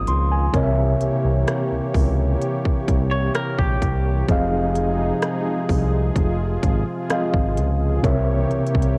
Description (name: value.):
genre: contemporary R&B.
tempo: 64 BPM.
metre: 4/4.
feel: straight.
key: unclear.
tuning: A4 = 441 Hz.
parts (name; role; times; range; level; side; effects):
mellow tine electric piano; accompaniment; 0.0-9.0 s; C3 to Eb6; -26 LUFS; equal; cassette tape.
warm analog pad; sustained chords; 0.0-9.0 s; C3 to Db5; -29 LUFS; equal; chorus, tremolo, sidechain pumping, cassette tape.
smooth gliding synth bass; bass; 0.0-9.0 s; F1 to Db2; -24 LUFS; equal; none.
trap drum kit; drums; 0.1-9.0 s; hi-hat, kick drum, rim click; -25 LUFS; equal; cassette tape.
direct-recorded clean electric guitar; arpeggios; 3.1-4.3 s; G4 to Db5; -30 LUFS; equal; subtle chorus, cassette tape, analog delay.
room: light reverb.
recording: home recording on cassette.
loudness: -21 LUFS.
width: mono.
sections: 0.0-9.0 A section.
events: none.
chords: 0.0 Fm7; 0.5 C7b9; 4.3 Fm7; 8.0 C7b9.